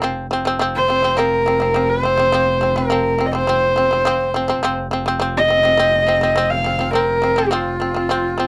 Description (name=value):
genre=mongolian traditional, Mongolian folk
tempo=104 BPM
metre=4/4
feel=straight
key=unclear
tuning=A4 = 440 Hz
part: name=shamisen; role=arpeggios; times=0.0-8.5 s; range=F3 to C4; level=-23 LUFS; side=equal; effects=none
part: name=muted double bass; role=drone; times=0.0-8.5 s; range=F1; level=-28 LUFS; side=equal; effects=none
part: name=rich horsehead fiddle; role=melody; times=0.8-8.5 s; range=F4 to F5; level=-19 LUFS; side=equal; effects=none
room=light reverb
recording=dry, close 1970s-style studio recording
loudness=-17 LUFS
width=mono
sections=0.0-8.5 A section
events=none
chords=0.0 F5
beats=| 0.03 0.61 1.18 1.76 | 2.33 2.91 3.48 4.06 | 4.63 5.21 5.79 6.36 | 6.94 7.51 8.09